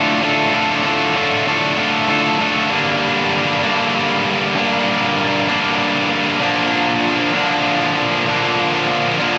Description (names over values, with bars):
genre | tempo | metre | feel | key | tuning
rock | 97 BPM | 3/4 | straight | G minor | A4 = 440 Hz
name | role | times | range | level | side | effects
tight distorted guitar | solo | 0.0-9.4 s | G2 to A4 | -16 LUFS | equal | distortion
room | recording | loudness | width
light reverb | nothing above 7.8 kHz | -16 LUFS | mono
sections
0.0-2.7 A section; 2.7-9.4 B section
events
build-up 0.0-2.7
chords
0.0 Dm/A; 2.7 Gm; 6.4 Bb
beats
0.23 | 0.85 1.47 2.09 | 2.71 3.33 3.95 | 4.57 5.19 5.81 | 6.43 7.04 7.67 | 8.29 8.90